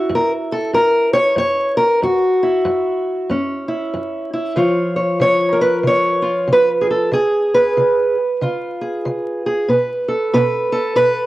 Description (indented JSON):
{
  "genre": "acoustic country blues, solo or duo",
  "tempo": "94 BPM",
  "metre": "4/4",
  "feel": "swing 61% on 8ths",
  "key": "unclear",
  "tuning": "A4 = 439 Hz",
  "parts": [
    { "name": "fingerpicked steel-string acoustic guitar", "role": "solo", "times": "0.0-11.3 s", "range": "F#2 to C#5", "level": "-15 LUFS", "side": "equal", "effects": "cassette tape" }
  ],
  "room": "moderate spring reverb, RT60 1.7 s",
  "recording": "home recording on cassette, vinyl crackle",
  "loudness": "-15 LUFS",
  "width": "side -16 dB against mid",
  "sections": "0.0-11.3 A section",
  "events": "none",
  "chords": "0.0 F#7; 4.6 C#7; 9.7 Asus2",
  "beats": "0.11 0.75 1.39 | 2.02 2.66 3.30 3.94 | 4.57 5.21 5.85 6.49 | 7.13 7.77 8.41 9.05 | 9.69 10.33 10.97"
}